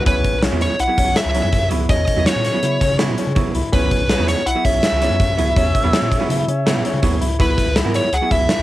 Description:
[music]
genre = progressive instrumental, band music in an uneven meter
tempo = 164 BPM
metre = 5/4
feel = straight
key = C# dorian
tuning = A4 = 440 Hz
[part]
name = fuzz lead guitar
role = melody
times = 0.0-8.6 s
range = B4 to F#5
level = -20 LUFS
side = equal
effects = distortion, cassette tape
[part]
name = clear baby grand piano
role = arpeggios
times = 0.0-8.6 s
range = C#4 to G#4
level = -26 LUFS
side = left 6 dB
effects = none
[part]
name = vintage hollow-body jazz guitar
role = accompaniment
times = 0.1-8.5 s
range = F#3 to A#4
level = -24 LUFS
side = right 6 dB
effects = none
[part]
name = round analog bass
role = bass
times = 0.1-8.6 s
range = B1 to C#3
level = -22 LUFS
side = equal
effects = none
[part]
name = gated 80s drum kit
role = drums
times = 0.1-8.6 s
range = hi-hat, kick drum, snare drum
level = -19 LUFS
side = equal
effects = cassette tape
[sound]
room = light reverb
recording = home recording on cassette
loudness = -15 LUFS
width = side -15 dB against mid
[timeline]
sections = 0.1-8.6 A section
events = none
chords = 0.1 C#m7; 7.4 Eadd9/C#

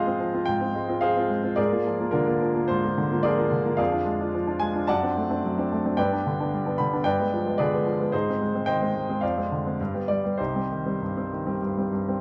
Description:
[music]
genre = classical, romantic character piece for solo piano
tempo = 109 BPM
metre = 4/4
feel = uneven beats, rubato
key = C minor from 3.8 s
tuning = A4 = 440 Hz
[part]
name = bright grand piano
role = solo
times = 0.0-12.2 s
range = C2 to B5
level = -25 LUFS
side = equal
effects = none
[sound]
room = moderate recital hall reverb, RT60 1.6 s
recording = dark, warm production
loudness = -25 LUFS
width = mono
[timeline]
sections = 0.0-12.2 A section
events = none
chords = 0.0 Fm; 1.6 Bb7/Ab; 3.8 Ddim/F; 4.9 D7/F#; 6.0 G; 7.1 G7b9; 8.1 Ab; 9.2 Dm7b5/F; 9.8 G; 10.4 Cm

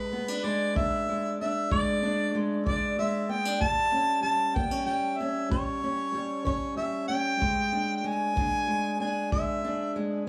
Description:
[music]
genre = acoustic country blues, solo or duo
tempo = 63 BPM (dotted quarters)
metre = 12/8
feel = straight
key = E mixolydian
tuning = A4 = 442 Hz
[part]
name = mellow harmonica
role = melody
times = 0.0-10.0 s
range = B4 to A5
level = -31 LUFS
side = equal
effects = none
[part]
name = fingerpicked steel-string acoustic guitar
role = accompaniment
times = 0.0-10.3 s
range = E2 to D4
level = -33 LUFS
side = equal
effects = none
[part]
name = kick drum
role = drums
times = 0.8-9.5 s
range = none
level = -34 LUFS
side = equal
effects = none
[sound]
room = light reverb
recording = small room ambience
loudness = -28 LUFS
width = mono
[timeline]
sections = 0.0-10.3 A section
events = none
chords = 0.0 E7; 3.6 A7; 7.4 E7

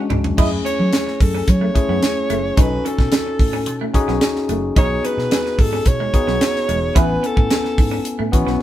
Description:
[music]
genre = polished 1980s jazz-funk pop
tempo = 109 BPM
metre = 4/4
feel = straight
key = F# dorian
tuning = A4 = 440 Hz
[part]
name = breathy alto saxophone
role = melody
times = 0.0-8.3 s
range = A4 to F#5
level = -23 LUFS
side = right 1 dB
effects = none
[part]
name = barky tine electric piano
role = accompaniment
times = 0.0-8.6 s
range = G#3 to G#5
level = -22 LUFS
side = left 3 dB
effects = overdrive
[part]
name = semi-hollow electric guitar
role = riff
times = 0.0-8.6 s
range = G#3 to E4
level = -27 LUFS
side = right 2 dB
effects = none
[part]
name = vintage muted fingered electric bass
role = bass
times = 0.1-8.6 s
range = E1 to F#3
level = -23 LUFS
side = equal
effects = none
[part]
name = tight funk drum kit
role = drums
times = 0.1-8.5 s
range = crash cymbal, hi-hat, kick drum, snare drum, toms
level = -17 LUFS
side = equal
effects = none
[sound]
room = moderate studio reverb, RT60 0.6 s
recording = band playing live in one room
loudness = -15 LUFS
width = side -13 dB against mid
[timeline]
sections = 0.4-8.6 A section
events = drum fill 0.0-0.4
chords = 0.4 F#m9; 2.6 B7; 4.8 Emaj9/B (rootless); 7.0 Amaj9

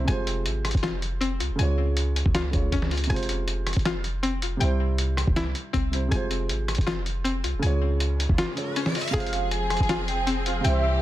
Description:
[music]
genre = hip hop, trap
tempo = 159 BPM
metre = 4/4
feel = half-time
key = F harmonic minor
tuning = A4 = 444 Hz
[part]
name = dark grand piano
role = accompaniment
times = 0.0-11.0 s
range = C3 to Db5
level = -32 LUFS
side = right 2 dB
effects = low-pass filter
[part]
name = string-like resonator pluck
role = arpeggios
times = 0.0-11.0 s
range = C4 to Ab5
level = -32 LUFS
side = left 5 dB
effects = chorus, low-pass filter, ping-pong delay
[part]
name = clean 808-style bass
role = bass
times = 0.0-11.0 s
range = F1 to Db2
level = -26 LUFS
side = equal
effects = none
[part]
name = lo-fi sampler-style drum kit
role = drums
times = 0.1-10.7 s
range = hi-hat, kick drum, rim click, snare drum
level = -27 LUFS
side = equal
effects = none
[part]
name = riser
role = sound effects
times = 8.1-9.1 s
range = none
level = -36 LUFS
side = equal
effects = none
[part]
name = warm velvety synth lead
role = second line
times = 9.1-11.0 s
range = E5 to Ab5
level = -28 LUFS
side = right 2 dB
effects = chorus, ping-pong delay
[part]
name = clear symphonic string section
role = sustained chords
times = 9.1-11.0 s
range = E3 to Ab4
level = -31 LUFS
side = left 2 dB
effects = none
[sound]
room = digital ambience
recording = dense, heavily limited modern master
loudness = -23 LUFS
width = side -14 dB against mid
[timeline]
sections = 0.0-9.1 A section; 9.1-11.0 B section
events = riser 8.1-9.1; break 8.4-9.1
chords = 0.1 Fm; 1.6 Db; 3.1 Fm; 4.6 C; 6.1 Fm; 7.6 Db; 9.1 Fm

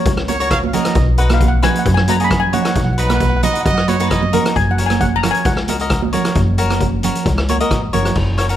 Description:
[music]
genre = calypso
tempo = 133 BPM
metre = 4/4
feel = straight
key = F# major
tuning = A4 = 439 Hz
[part]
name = steel pan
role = melody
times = 0.0-7.7 s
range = C#5 to B5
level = -21 LUFS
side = left 3 dB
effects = none
[part]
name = cavaquinho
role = accompaniment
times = 0.0-8.6 s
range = D#4 to D#5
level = -22 LUFS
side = left 3 dB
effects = none
[part]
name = upright bass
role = bass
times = 0.1-8.6 s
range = F#1 to F#2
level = -18 LUFS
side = equal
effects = none
[part]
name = street-band drum kit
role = drums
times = 0.1-8.6 s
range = crash cymbal, hi-hat, kick drum, rim click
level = -19 LUFS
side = left 1 dB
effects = none
[part]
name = clear trumpet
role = second line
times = 0.3-4.4 s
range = B4 to E#5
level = -21 LUFS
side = right 3 dB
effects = none
[part]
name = congas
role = percussion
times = 0.3-8.0 s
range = none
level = -22 LUFS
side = right 9 dB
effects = none
[sound]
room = light reverb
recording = close, detailed microphones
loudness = -13 LUFS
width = side -11 dB against mid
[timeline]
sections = 0.0-8.2 A section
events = none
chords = 0.0 F#; 1.0 B; 4.6 F#

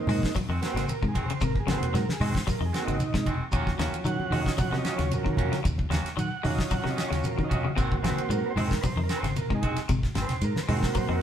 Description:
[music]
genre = afrobeat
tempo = 113 BPM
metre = 4/4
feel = straight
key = unclear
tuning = A4 = 440 Hz
[part]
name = overdriven combo organ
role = accompaniment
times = 0.0-11.2 s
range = F3 to Gb5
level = -32 LUFS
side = right 4 dB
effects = none
[part]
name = clean electric guitar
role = arpeggios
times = 0.1-11.2 s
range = Ab2 to Ab3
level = -34 LUFS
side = left 5 dB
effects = none
[part]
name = twangy electric guitar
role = stabs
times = 0.1-11.2 s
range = Eb3 to Gb4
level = -35 LUFS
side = right 2 dB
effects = none
[part]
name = fingered electric bass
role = bass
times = 0.1-11.2 s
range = Ab1 to Eb3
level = -31 LUFS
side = equal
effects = none
[part]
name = damped 70s drum kit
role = drums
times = 0.1-11.1 s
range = hi-hat, kick drum, ride cymbal, snare drum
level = -31 LUFS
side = equal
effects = none
[part]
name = congas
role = percussion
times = 0.1-11.1 s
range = none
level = -32 LUFS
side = equal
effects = none
[part]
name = shekere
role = percussion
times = 0.1-11.1 s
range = none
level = -35 LUFS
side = equal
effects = none
[sound]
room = wet studio reverb, RT60 0.7 s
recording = band playing live in one room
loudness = -25 LUFS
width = side -9 dB against mid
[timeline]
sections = 0.0-11.2 A section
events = transistor combo organ solo 0.0-11.2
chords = 0.0 Ab7; 3.5 Ebm7; 7.8 Ab7

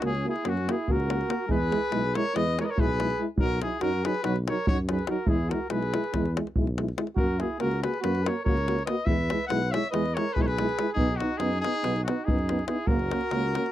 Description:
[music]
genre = balkan folk, Balkan brass band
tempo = 285 BPM (eighths)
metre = 9/8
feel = straight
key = unclear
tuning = A4 = 440 Hz
[part]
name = clear trumpet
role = melody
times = 0.0-13.7 s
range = F#4 to F#5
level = -31 LUFS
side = left 4 dB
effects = none
[part]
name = mellow flugelhorn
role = second line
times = 0.0-13.7 s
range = C#4 to C#5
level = -33 LUFS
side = right 6 dB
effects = none
[part]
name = mellow French horn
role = accompaniment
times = 0.0-13.6 s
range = C#4 to F#4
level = -34 LUFS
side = left 6 dB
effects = none
[part]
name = warm euphonium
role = accompaniment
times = 0.0-13.7 s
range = F#3 to B3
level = -32 LUFS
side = right 5 dB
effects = none
[part]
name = mellow tuba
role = bass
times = 0.0-13.6 s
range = F#1 to F#2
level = -30 LUFS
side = equal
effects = none
[part]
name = davul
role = percussion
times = 0.0-13.7 s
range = none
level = -29 LUFS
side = equal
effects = none
[sound]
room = little or no reverb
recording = dry, close 1970s-style studio recording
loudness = -24 LUFS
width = side -13 dB against mid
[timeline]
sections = 0.0-13.7 A section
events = none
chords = 0.0 F#; 1.5 E; 3.4 B; 5.3 E; 7.2 F#; 9.1 E; 11.0 B; 12.9 F#

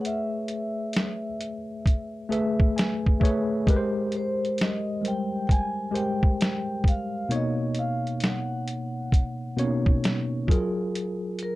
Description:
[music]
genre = lo-fi hip hop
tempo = 66 BPM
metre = 4/4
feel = swing 66% on 16ths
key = unclear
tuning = A4 = 440 Hz
[part]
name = vibraphone with soft mallets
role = melody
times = 0.0-11.6 s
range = Bb4 to Ab5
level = -33 LUFS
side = equal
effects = plate reverb
[part]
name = mellow tine electric piano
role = accompaniment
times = 0.0-11.6 s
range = B2 to G#5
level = -27 LUFS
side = left 1 dB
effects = medium stereo tremolo
[part]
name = lo-fi sampler-style drum kit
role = drums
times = 0.0-11.6 s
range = hi-hat, kick drum, snare drum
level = -23 LUFS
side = equal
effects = none
[sound]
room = light reverb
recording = dark, warm production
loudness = -24 LUFS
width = side -18 dB against mid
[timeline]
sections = 0.0-11.6 A section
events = tine electric piano fill 2.3-3.7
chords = 0.0 Amaj9; 3.7 Abmaj9; 7.3 Bmaj9; 10.5 Gbmaj9

